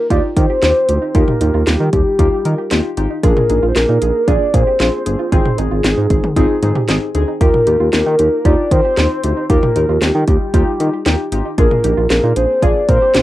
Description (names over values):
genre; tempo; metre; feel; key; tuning
synth-pop; 115 BPM; 4/4; straight; Eb major; A4 = 440 Hz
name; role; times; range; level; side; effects
soft octave-layered synth lead; melody; 0.0-13.2 s; G4 to D5; -16 LUFS; equal; chorus, phaser, cassette tape
muted felt-like synth keys; accompaniment; 0.0-13.2 s; Bb3 to Bb4; -21 LUFS; left 4 dB; chorus, cassette tape
soft round pluck; arpeggios; 0.1-13.2 s; Eb4 to G4; -24 LUFS; right 7 dB; chorus, cassette tape, analog delay
smooth synth bass; bass; 0.1-13.2 s; G1 to Eb3; -16 LUFS; equal; none
house drum kit; drums; 0.1-13.2 s; hi-hat, kick drum, snare drum, toms; -16 LUFS; equal; cassette tape
room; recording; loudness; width
wet booth ambience, RT60 0.2 s; home recording on cassette; -12 LUFS; side -15 dB against mid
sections
0.0-13.2 A section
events
none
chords
0.0 Ebadd9; 3.2 Bb7; 5.3 Ab; 7.4 Ebadd9; 11.6 Bb7